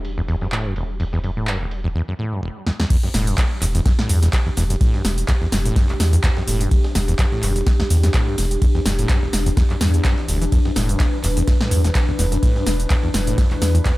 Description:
acid house; 126 BPM; 4/4; swing 55% on 16ths; E minor; A4 = 440 Hz
warbly tape-like pad; sustained chords; 0.0-14.0 s; E3 to B4; -28 LUFS; left 1 dB; chorus, built-in reverb, sidechain pumping
round analog bass; bass; 0.0-13.8 s; E1 to E2; -20 LUFS; equal; sidechain pumping
breakbeat sampler-style drum kit; drums; 0.0-14.0 s; ride cymbal, snare drum; -38 LUFS; right 1 dB
acid bass, saw; riff; 0.2-13.9 s; E1 to E3; -23 LUFS; equal; tube saturation, cassette tape, sidechain pumping, analog delay
electro analog drum machine; drums; 0.5-14.0 s; crash cymbal, handclaps, hi-hat, ride cymbal, shaker, snare drum; -25 LUFS; equal
electronic kick drum; drums; 2.9-14.0 s; -18 LUFS; equal
little or no reverb; echo-heavy mix; -16 LUFS; side -18 dB against mid
0.0-2.9 A section; 2.9-14.0 B section
drum fill 2.7; drop 2.9-14.0
0.0 Em7
0.05 0.52 | 1.00 1.48 1.95 2.43 | 2.90 3.38 3.86 4.33 | 4.81 5.28 5.76 6.24 | 6.71 7.19 7.67 8.14 | 8.62 9.09 9.57 10.05 | 10.52 11.00 11.47 11.95 | 12.43 12.90 13.38 13.86

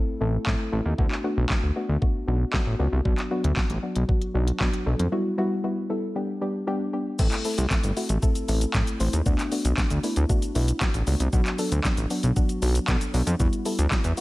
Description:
dance-pop; 116 BPM; 4/4; straight; A dorian; A4 = 440 Hz
soft round pluck; accompaniment; 0.0-14.2 s; F#3 to C5; -28 LUFS; left 1 dB; chorus, sidechain pumping
fat analog bass; bass; 0.2-14.1 s; G1 to B2; -23 LUFS; equal; sidechain pumping
smooth R&B drum kit; drums; 0.5-14.2 s; crash cymbal, handclaps, hi-hat, kick drum, shaker, snare drum; -25 LUFS; equal
little or no reverb; -22 LUFS; side -19 dB against mid
0.0-7.2 A section; 7.2-14.2 B section
break 5.1-7.2
0.0 Am; 1.0 D6; 3.1 Bm; 5.1 Emadd9; 6.2 G; 7.2 Am; 9.3 D6; 11.3 Bm; 13.4 Emadd9
0.47 | 0.98 1.50 2.02 2.54 | 3.05 3.57 4.09 4.61 | 5.12 5.64 6.16 6.67 | 7.19 7.71 8.22 8.74 | 9.26 9.78 10.29 10.81 | 11.33 11.85 12.36 12.88 | 13.40 13.91

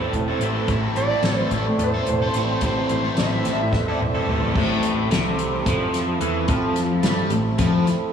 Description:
psychedelic rock; 217 BPM (eighths); 7/8; straight; A minor; A4 = 440 Hz
hand-pumped harmonium; sustained chords; 0.0-8.1 s; E3 to C5; -28 LUFS; right 4 dB
crunchy overdriven guitar; riff; 0.0-7.9 s; A2 to A4; -24 LUFS; left 2 dB; phaser
growling picked electric bass; bass; 0.0-7.8 s; E1 to G2; -25 LUFS; equal; overdrive
soft-mallet drum kit; drums; 0.1-8.0 s; crash cymbal, hi-hat, kick drum, snare drum, toms; -26 LUFS; left 1 dB
pulse-width lead; melody; 1.0-4.2 s; C5 to E5; -27 LUFS; right 2 dB; chorus, analog delay
wet huge ambient reverb, RT60 8.8 s; dreamy mix soaked in reverb; -19 LUFS; side -7 dB against mid
0.0-4.6 A section; 4.6-8.1 B section
drum fill 3.7-4.6
0.0 Am
0.13 0.41 | 0.68 0.96 1.24 1.51 1.79 2.07 2.35 | 2.62 2.90 3.18 3.45 3.73 4.01 4.28 | 4.56 4.83 5.11 5.39 5.66 5.94 6.21 | 6.49 6.76 7.04 7.32 7.59 7.87

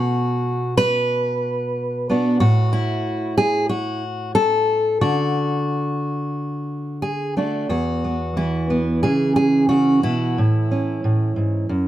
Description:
folk, solo fingerstyle acoustic guitar; 91 BPM; 4/4; rubato; E mixolydian; A4 = 436 Hz
fingerpicked steel-string acoustic guitar; solo; 0.0-11.9 s; E2 to B4; -18 LUFS; equal
light reverb; -18 LUFS; side -13 dB against mid
0.0-7.7 A section; 7.7-11.9 B section
0.0 B5; 2.4 N.C.; 5.0 D; 7.7 E5; 9.0 C#m7; 10.4 A
0.45 1.10 1.75 | 2.40 3.05 3.71 4.36 | 5.02 5.67 6.34 7.01 | 7.69 8.37 9.04 9.71 | 10.37 11.03 11.69

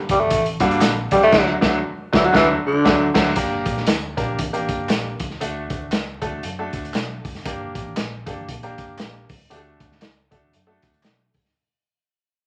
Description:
uptempo 1960s-style soul; 117 BPM; 4/4; swing 58% on 8ths; D major; A4 = 440 Hz
growling tenor saxophone; melody; 0.1-3.1 s; D3 to A3; -19 LUFS; equal
vintage muted fingered electric bass; bass; 0.1-11.5 s; F#1 to F#2; -36 LUFS; equal
crunchy breakbeat drum kit; drums; 0.1-11.5 s; crash cymbal, hi-hat, kick drum, snare drum; -25 LUFS; equal
congas; percussion; 0.1-11.4 s; -43 LUFS; equal
tambourine and handclaps; percussion; 0.1-11.4 s; -40 LUFS; equal
clear baby grand piano; accompaniment; 0.6-11.3 s; D3 to Bb4; -25 LUFS; equal
moderate large studio reverb, RT60 0.8 s; vinyl crackle; -20 LUFS; mono
0.0-3.4 A section; 3.4-11.6 B section
band accent 1.3-3.4; fade-out 3.4-11.6
0.0 Gm; 1.3 D; 3.4 Gm; 5.4 D; 7.5 Gm; 9.5 D
0.31 0.82 | 1.33 1.83 2.35 2.86 | 3.37 3.88 4.39 4.90 | 5.41 5.92 6.43 6.95 | 7.46 7.97 8.48 8.99 | 9.51 10.02 10.53 11.04

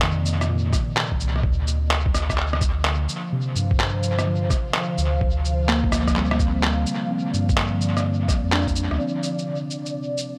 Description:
future garage; 127 BPM; 4/4; swing 65% on 16ths; A4 = 438 Hz
muted felt-like synth keys; accompaniment; 0.0-10.4 s; Bb2 to D4; -30 LUFS; equal; chorus, vintage 12-bit sampler grit, sidechain pumping, analog delay
ethereal airy pad; sustained chords; 0.0-10.4 s; C3 to F5; -31 LUFS; equal; ensemble chorus, built-in reverb, sidechain pumping
soft dub sub bass; bass; 0.0-9.0 s; C2 to G2; -26 LUFS; equal; sidechain pumping
electronic handclaps, shaker and rim click; drums; 0.0-10.3 s; -28 LUFS; equal; overdrive, dub echo
electronic kick drum; drums; 0.7-8.7 s; -26 LUFS; equal; overdrive
moderate plate reverb, RT60 1.9 s; echo-heavy mix; -22 LUFS; mono
0.0-9.0 A section; 9.0-10.4 B section
filter sweep on ambient pad 9.0-10.4
0.0 Cm9; 1.4 Bb69/D; 9.0 C7sus2
0.02 0.49 0.96 | 1.43 1.91 2.38 2.85 | 3.32 3.79 4.27 4.74 | 5.21 5.68 6.16 6.63 | 7.10 7.58 8.05 8.52 | 8.99 9.46 9.94

